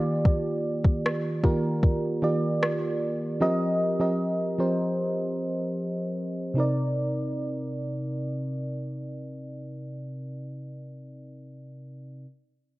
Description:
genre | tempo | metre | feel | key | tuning
contemporary R&B | 76 BPM | 4/4 | straight | C minor | A4 = 445 Hz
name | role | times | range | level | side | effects
mellow FM electric piano | accompaniment | 0.0-12.2 s | C3 to Eb5 | -27 LUFS | equal | chorus
smooth R&B drum kit | drums | 0.3-2.8 s | kick drum, rim click | -23 LUFS | equal | overdrive
room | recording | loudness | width
light reverb | worn, warbling old tape, cassette tape, warbly pitch drift | -25 LUFS | side -19 dB against mid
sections
0.0-6.6 A section; 6.6-9.7 B section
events
none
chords
0.0 Ebmaj9; 3.4 F7sus4; 6.6 Cm7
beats
| 0.25 1.04 1.83 2.62 | 3.41 4.20 4.99 5.77 | 6.56 7.35 8.14 8.93

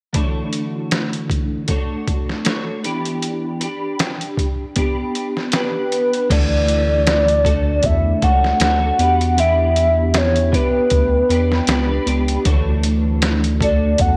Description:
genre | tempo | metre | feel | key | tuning
indie pop, bedroom pop | 78 BPM | 4/4 | swing 55% on 16ths | D major | A4 = 440 Hz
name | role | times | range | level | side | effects
twelve-string electric guitar | accompaniment | 0.1-14.2 s | D3 to C#5 | -24 LUFS | equal | ensemble chorus, warbly pitch drift
trip hop sampler-style drum kit | drums | 0.1-14.2 s | crash cymbal, hi-hat, kick drum, snare drum | -23 LUFS | equal | none
hollow clarinet-like synth lead | melody | 5.5-14.2 s | B4 to F#5 | -20 LUFS | equal | lush chorus, tape echo
round analog bass | bass | 6.3-14.2 s | C#2 to E2 | -21 LUFS | equal | none
room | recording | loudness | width
light reverb | none | -18 LUFS | mono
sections
0.1-6.3 A section; 6.3-14.2 B section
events
none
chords
0.1 Dmaj9; 2.8 Em7; 6.3 Dmaj9; 9.0 Em7; 12.5 Dmaj9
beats
| 0.14 0.91 1.68 2.45 | 3.22 3.99 4.76 5.53 | 6.30 7.07 7.84 8.61 | 9.38 10.15 10.92 11.69 | 12.46 13.22 13.99

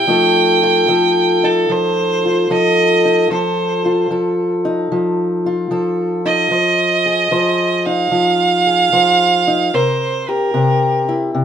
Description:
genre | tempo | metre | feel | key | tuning
acoustic country blues, solo or duo | 75 BPM | 4/4 | swing 67% on 8ths | unclear | A4 = 445 Hz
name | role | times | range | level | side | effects
clear fiddle | melody | 0.0-11.1 s | A4 to G5 | -15 LUFS | right 4 dB | none
fingerpicked acoustic archtop guitar | accompaniment | 0.0-11.4 s | C3 to C5 | -15 LUFS | left 1 dB | none
room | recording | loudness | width
moderate studio reverb, RT60 0.6 s | minimal, uncompressed stereo recording | -13 LUFS | side -8 dB against mid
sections
0.0-11.4 A section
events
none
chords
0.1 F7; 6.5 Fm7; 9.7 C7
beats
| 0.08 0.89 1.69 2.50 | 3.30 4.11 4.91 5.72 | 6.52 7.33 8.13 8.93 | 9.74 10.54 11.34

